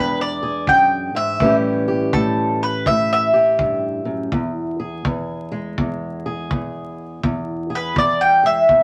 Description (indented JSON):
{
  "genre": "acoustic country blues, solo or duo",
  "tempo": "82 BPM",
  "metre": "4/4",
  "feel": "swing 63% on 8ths",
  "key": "E mixolydian",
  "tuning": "A4 = 440 Hz",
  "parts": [
    { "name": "mandolin", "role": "melody", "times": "0.0-8.8 s", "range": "A4 to G5", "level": "-19 LUFS", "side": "equal", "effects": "none" },
    { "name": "fingerpicked old ladder-braced acoustic guitar", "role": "accompaniment", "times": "0.0-8.8 s", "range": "E2 to G#4", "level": "-25 LUFS", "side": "equal", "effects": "none" },
    { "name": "kick drum", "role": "drums", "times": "0.7-8.8 s", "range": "none", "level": "-28 LUFS", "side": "equal", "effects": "none" }
  ],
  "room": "wet studio ambience, RT60 0.5 s",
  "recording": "vinyl crackle",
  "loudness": "-19 LUFS",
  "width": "mono",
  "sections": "0.0-8.8 A section",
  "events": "none",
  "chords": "0.0 E7; 1.4 A7; 4.3 E"
}